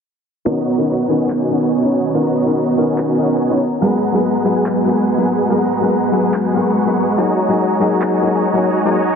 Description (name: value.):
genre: future bass.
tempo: 143 BPM.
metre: 4/4.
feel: half-time.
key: unclear.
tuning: A4 = 440 Hz.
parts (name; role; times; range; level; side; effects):
felt-muted upright piano; accompaniment; 0.5-9.0 s; D#3 to C#5; -18 LUFS; left 3 dB; low-pass filter, ping-pong delay.
airy breathy pad; sustained chords; 1.1-9.2 s; D#3 to A#5; -22 LUFS; equal; chorus.
dense compressed supersaw; riff; 0.5-9.2 s; G#3 to C#6; -17 LUFS; right 2 dB; low-pass filter.
electronic handclaps; drums; 1.3-8.1 s; none; -33 LUFS; equal; overdrive, small room ambience.
room: moderate lush hall reverb, RT60 2.3 s.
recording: heavily compressed radio sound, multiband compression, low-pass filter.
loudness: -14 LUFS.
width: side -6 dB against mid.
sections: 0.5-9.2 A section.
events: filter sweep on felt piano 0.5-9.2; filter sweep on analog synth pad 0.5-9.2; filter sweep 0.5-9.2.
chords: 0.5 Bmaj9; 3.6 G#m9; 7.2 F#69.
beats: | 0.46 0.88 1.30 1.72 | 2.14 2.56 2.98 3.40 | 3.82 4.24 4.66 5.08 | 5.50 5.92 6.34 6.76 | 7.18 7.60 8.02 8.44 | 8.86.